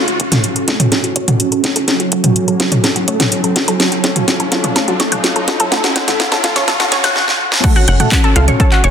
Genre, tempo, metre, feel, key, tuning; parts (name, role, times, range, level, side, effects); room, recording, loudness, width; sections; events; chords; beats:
melodic techno; 125 BPM; 4/4; straight; F# harmonic minor; A4 = 437 Hz
mellow synth brass; melody; 0.0-8.9 s; C#3 to C#5; -20 LUFS; right 3 dB; chorus, ping-pong delay
dark analog pad; sustained chords; 0.0-8.9 s; C#4 to A4; -23 LUFS; left 1 dB; chorus, sidechain pumping
riser; sound effects; 0.0-7.2 s; -23 LUFS; equal
analog pluck; arpeggios; 0.1-8.9 s; E#4 to F#6; -20 LUFS; equal; chorus, sidechain pumping, tape echo
house drum kit; drums; 0.1-8.9 s; crash cymbal, handclaps, hi-hat, snare drum, toms; -15 LUFS; equal; overdrive
tight sequencer bass; bass; 0.2-8.9 s; F#1 to C#2; -17 LUFS; equal; tube saturation, sidechain pumping, high-pass filter
electronic kick drum; drums; 7.6-8.7 s; -13 LUFS; equal; overdrive
light reverb, digital ambience; dense, heavily limited modern master, high-pass filter; -11 LUFS; side -8 dB against mid
0.0-7.6 A section; 7.6-8.9 B section
build-up 0.0-7.6; drum fill 0.0-7.2, 7.2-7.6; riser 0.0-7.2; filter sweep on synth arpeggio sound 0.0-7.6; filter sweep on analog polysynth 0.0-7.6; drop 7.6-8.9
0.0 F#m
0.44 0.92 1.40 | 1.88 2.36 2.84 3.32 | 3.80 4.28 4.76 5.24 | 5.72 6.20 6.68 7.16 | 7.64 8.12 8.60